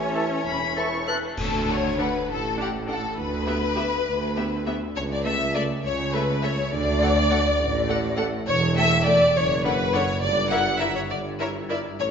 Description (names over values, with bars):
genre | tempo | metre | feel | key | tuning
cinematic, playful, whimsical film cue | 68 BPM (dotted quarters) | 6/8 | straight | D major | A4 = 440 Hz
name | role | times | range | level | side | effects
rich chamber violin section | second line | 0.0-12.1 s | G4 to F#5 | -24 LUFS | left 2 dB | none
mellow French horn section | sustained chords | 0.0-1.1 s | E3 | -33 LUFS | equal | none
mellow tuba | bass | 0.0-12.1 s | E1 to D2 | -29 LUFS | right 2 dB | none
rich chamber double bass section | bass | 0.0-12.1 s | E1 to D2 | -31 LUFS | right 2 dB | none
warm chamber cello section | bass | 0.0-12.1 s | C#2 to C#4 | -31 LUFS | right 2 dB | none
bright clarinet | second line | 0.1-1.2 s | A4 | -35 LUFS | equal | none
large flute ensemble | second line | 0.1-1.1 s | A5 | -37 LUFS | left 4 dB | none
mellow cor anglais | second line | 0.1-1.2 s | E5 | -36 LUFS | left 1 dB | none
rich chamber viola section | accompaniment | 0.1-11.8 s | A3 to Bb4 | -33 LUFS | right 2 dB | none
rich chamber violin section | melody | 0.2-11.8 s | E5 to F#6 | -33 LUFS | left 5 dB | none
mellow bassoon | accompaniment | 0.2-1.2 s | E3 | -35 LUFS | right 2 dB | none
clash cymbals and concert bass drum | percussion | 1.4-2.5 s | none | -36 LUFS | equal | none
room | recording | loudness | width
wet scoring stage reverb, RT60 1.8 s | recorded in a church or concert hall, nothing above 7.5 kHz | -21 LUFS | side -7 dB against mid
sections
0.0-1.4 A section; 1.4-12.1 B section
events
band accent 1.4-2.0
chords
0.0 A; 1.4 D5; 3.2 Em7/D (rootless); 5.0 A/C#; 6.7 D5; 8.5 A5/E; 9.4 D/F#; 10.2 Edim/G